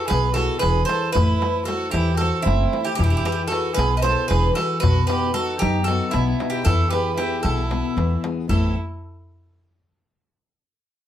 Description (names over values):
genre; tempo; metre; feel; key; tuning
greek folk, Greek bouzouki band; 229 BPM (eighths); 7/8; straight; A dorian sharp4; A4 = 443 Hz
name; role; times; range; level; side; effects
Greek bouzouki; melody; 0.0-8.7 s; E4 to D#5; -23 LUFS; right 3 dB; none
warm violin; second line; 0.0-8.7 s; B3 to B4; -29 LUFS; right 4 dB; none
fingerpicked steel-string acoustic guitar; accompaniment; 0.0-8.7 s; A2 to C5; -26 LUFS; left 5 dB; none
upright bass; bass; 0.1-8.7 s; E1 to F#2; -22 LUFS; equal; none
darbuka; percussion; 0.1-8.7 s; none; -24 LUFS; left 1 dB; none
room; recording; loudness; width
light reverb; none; -18 LUFS; side -11 dB against mid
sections
0.0-8.5 A section; 8.5-10.3 B section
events
none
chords
0.0 E; 1.2 Am; 3.0 E; 4.8 B; 6.7 E; 8.5 Am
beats
0.10 0.37 0.63 0.89 | 1.15 1.42 1.68 1.94 2.20 2.46 2.73 | 2.99 3.25 3.51 3.77 4.04 4.30 4.56 | 4.82 5.09 5.35 5.61 5.87 6.13 6.40 | 6.66 6.92 7.18 7.45 7.71 7.97 8.23 | 8.50